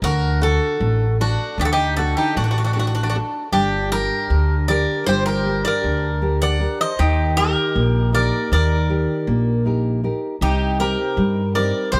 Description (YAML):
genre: greek folk, Greek bouzouki band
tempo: 156 BPM (eighths)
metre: 9/8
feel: straight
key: D phrygian dominant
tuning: A4 = 442 Hz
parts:
  - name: Greek bouzouki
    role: melody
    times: 0.0-12.0 s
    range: F#4 to F#5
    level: -25 LUFS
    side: equal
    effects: none
  - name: Greek bouzouki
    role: second line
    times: 0.0-12.0 s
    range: D4 to D5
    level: -29 LUFS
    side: equal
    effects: none
  - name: nylon-string guitar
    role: accompaniment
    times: 0.0-12.0 s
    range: C3 to Bb4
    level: -26 LUFS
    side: equal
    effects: none
  - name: upright bass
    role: bass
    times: 0.0-12.0 s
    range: G1 to G2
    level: -23 LUFS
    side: equal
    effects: none
room: light reverb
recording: none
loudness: -20 LUFS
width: mono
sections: 0.0-12.0 A section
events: speeding up 0.0-12.0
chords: 0.0 D; 3.5 Gm; 7.0 Eb; 10.4 Cm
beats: | 0.03 0.42 0.81 1.20 1.59 1.98 2.37 2.76 3.14 | 3.53 3.92 4.30 4.69 5.08 5.46 5.84 6.23 6.61 | 7.00 7.38 7.76 8.14 8.53 8.91 9.29 9.67 10.05 | 10.43 10.81 11.19 11.57 11.95